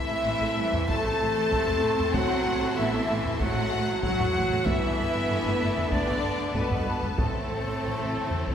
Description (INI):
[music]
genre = cinematic, epic orchestral film score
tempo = 95 BPM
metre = 4/4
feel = straight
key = A dorian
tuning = A4 = 440 Hz
[part]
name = warm symphonic violin section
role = melody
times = 0.0-8.5 s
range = A4 to A5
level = -34 LUFS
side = left 4 dB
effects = none
[part]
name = concert flute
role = second line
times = 0.0-8.5 s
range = A4 to A5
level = -34 LUFS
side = left 1 dB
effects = none
[part]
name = rich symphonic violin section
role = second line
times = 0.0-8.5 s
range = A4 to A5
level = -36 LUFS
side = left 2 dB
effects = none
[part]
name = warm symphonic viola section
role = accompaniment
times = 0.0-8.5 s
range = C3 to C4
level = -34 LUFS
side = right 1 dB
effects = none
[part]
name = clear trombone section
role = sustained chords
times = 0.0-8.5 s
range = A2 to A3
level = -34 LUFS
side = right 2 dB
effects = none
[part]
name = warm French horn section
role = sustained chords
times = 0.0-8.5 s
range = A3 to A4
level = -30 LUFS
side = left 2 dB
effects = none
[part]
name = warm symphonic string section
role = sustained chords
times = 0.0-8.5 s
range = D4 to C6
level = -36 LUFS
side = left 1 dB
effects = none
[part]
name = warm studio cello section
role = bass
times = 0.0-8.5 s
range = E3 to C4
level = -34 LUFS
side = right 2 dB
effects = none
[part]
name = rich symphonic double bass section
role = bass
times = 0.1-8.5 s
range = G1 to A1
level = -34 LUFS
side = right 2 dB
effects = none
[part]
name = taiko ensemble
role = drums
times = 0.7-8.5 s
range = none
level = -31 LUFS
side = equal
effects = none
[part]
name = timpani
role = percussion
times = 7.2-8.5 s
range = A2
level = -37 LUFS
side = equal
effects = none
[sound]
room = wet scoring stage reverb, RT60 1.6 s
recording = recorded in a church or concert hall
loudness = -24 LUFS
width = side -8 dB against mid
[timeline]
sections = 0.0-8.5 A section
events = timpani fill 7.2-8.5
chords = 0.0 Am; 4.7 Gadd9; 7.2 Am